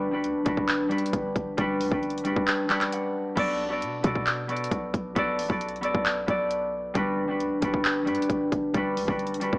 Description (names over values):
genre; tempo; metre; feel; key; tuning
hip hop, trap; 134 BPM; 4/4; half-time; B minor; A4 = 440 Hz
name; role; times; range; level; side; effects
concert harp; accompaniment; 0.0-9.6 s; G3 to F#5; -26 LUFS; equal; low-pass filter
warm 808-style bass; bass; 0.0-9.6 s; G1 to B2; -36 LUFS; equal; none
trap drum kit; drums; 0.2-9.6 s; crash cymbal, handclaps, hi-hat, kick drum; -28 LUFS; equal; none
room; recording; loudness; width
light reverb, digital ambience; small speaker sound; -24 LUFS; side -23 dB against mid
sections
0.0-3.4 A section; 3.4-9.6 A section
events
kick muted 2.5-3.4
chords
0.0 Gmaj7; 3.4 Bm7; 7.0 Gmaj7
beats
0.24 0.69 1.13 | 1.58 2.03 2.48 2.92 | 3.37 3.82 4.27 4.71 | 5.16 5.61 6.06 6.51 | 6.95 7.40 7.85 8.30 | 8.74 9.19